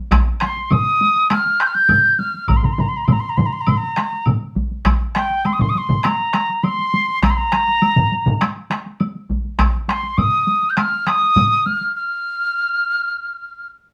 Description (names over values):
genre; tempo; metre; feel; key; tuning
japanese traditional, taiko drum ensemble; 101 BPM; 4/4; straight; F suspended pentatonic; A4 = 440 Hz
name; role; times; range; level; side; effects
solo taiko drums; percussion; 0.1-9.7 s; none; -22 LUFS; equal; none
taiko ensemble; percussion; 0.1-11.9 s; none; -26 LUFS; equal; none
taiko ensemble; percussion; 0.1-11.5 s; none; -26 LUFS; equal; none
taiko ensemble; percussion; 0.1-11.5 s; none; -24 LUFS; equal; none
woodblock; percussion; 0.1-11.5 s; none; -30 LUFS; equal; none
wooden piccolo; melody; 0.4-13.7 s; G5 to G6; -19 LUFS; equal; none
room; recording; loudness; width
wet studio reverb, RT60 0.5 s; band playing live in one room; -18 LUFS; mono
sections
0.0-13.9 A section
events
stop 12.0-13.9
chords
none